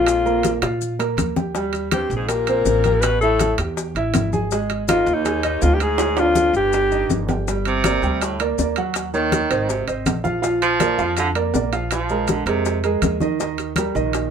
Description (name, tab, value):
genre	Afro-Cuban jazz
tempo	162 BPM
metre	4/4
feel	straight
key	G minor from 7.5 s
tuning	A4 = 440 Hz
part	clear alto saxophone	melody	0.0-7.3 s	Eb4 to B4	-19 LUFS	left 4 dB	none
part	breathy baritone saxophone	second line	0.0-12.8 s	Eb2 to F3	-24 LUFS	right 4 dB	none
part	clear concert grand piano	accompaniment	0.0-14.3 s	Eb3 to Ab5	-23 LUFS	right 4 dB	none
part	upright bass	bass	0.0-14.3 s	G1 to Bb2	-25 LUFS	equal	none
part	bongos	percussion	0.1-14.3 s	none	-28 LUFS	left 6 dB	none
part	congas	percussion	0.1-14.3 s	none	-26 LUFS	left 2 dB	none
part	maracas	percussion	0.1-14.3 s	none	-34 LUFS	left 10 dB	none
part	timbales	percussion	0.1-14.3 s	none	-27 LUFS	right 6 dB	none
room	moderate club reverb, RT60 0.6 s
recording	minimal, uncompressed stereo recording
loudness	-18 LUFS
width	side -7 dB against mid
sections	0.0-7.5 A section; 7.5-14.3 B section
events	drum fill 0.6-1.6, 6.0-7.5; baritone saxophone solo 7.5-14.3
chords	0.1 Bb5; 1.6 Eb6; 3.0 A5; 4.5 Ab5; 6.0 Ddim; 6.7 Eb/G; 7.5 Gmadd11; 9.0 Ebm7; 9.7 Abadd9; 10.4 Bb; 11.9 Bbsus2; 13.4 Eb